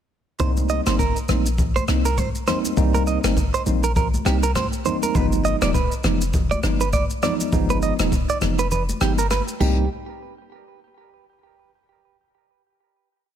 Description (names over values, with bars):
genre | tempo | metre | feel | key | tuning
afrobeats | 101 BPM | 4/4 | swing 58% on 16ths | C minor | A4 = 440 Hz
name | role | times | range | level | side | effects
tine electric piano | accompaniment | 0.4-9.8 s | F3 to Eb4 | -25 LUFS | equal | medium stereo tremolo
direct-recorded clean electric guitar | riff | 0.4-9.9 s | G4 to Eb5 | -26 LUFS | right 7 dB | tape echo
warm 808-style bass | bass | 0.4-9.9 s | Eb1 to C2 | -23 LUFS | left 1 dB | none
jazz brush drum kit | drums | 0.4-9.8 s | crash cymbal, kick drum, rim click, shaker | -24 LUFS | left 1 dB | none
congas | percussion | 0.4-9.9 s | none | -31 LUFS | left 2 dB | none
room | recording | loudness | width
light reverb | none | -18 LUFS | side -9 dB against mid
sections
0.4-9.9 verse; 9.9-12.3 final hit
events
kick muted 8.7-9.9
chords
0.4 Cm7; 5.2 G7b9b13; 9.6 Cm7; 9.9 N.C.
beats
| 0.40 0.99 1.59 2.18 | 2.77 3.37 3.96 4.56 | 5.15 5.74 6.34 6.93 | 7.53 8.12 8.71 9.31